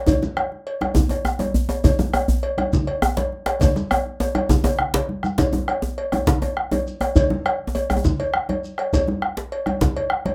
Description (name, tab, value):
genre	west african traditional, West African drum ensemble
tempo	136 BPM (dotted quarters)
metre	12/8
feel	straight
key	none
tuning	none
part	bombo	percussion	0.1-10.3 s	none	-26 LUFS	equal	none
part	congas	percussion	0.1-10.3 s	none	-29 LUFS	equal	none
part	cowbell	percussion	0.1-10.3 s	none	-28 LUFS	equal	none
part	djembe	percussion	0.1-10.3 s	none	-26 LUFS	equal	none
part	djembe	percussion	0.1-9.9 s	none	-26 LUFS	equal	none
part	shekere	percussion	0.1-9.9 s	none	-31 LUFS	equal	none
room	wet small room reverb, RT60 0.5 s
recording	rough home demo mix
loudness	-22 LUFS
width	mono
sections	0.0-5.4 A section; 5.4-10.3 A section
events	drum fill 3.6-5.4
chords	none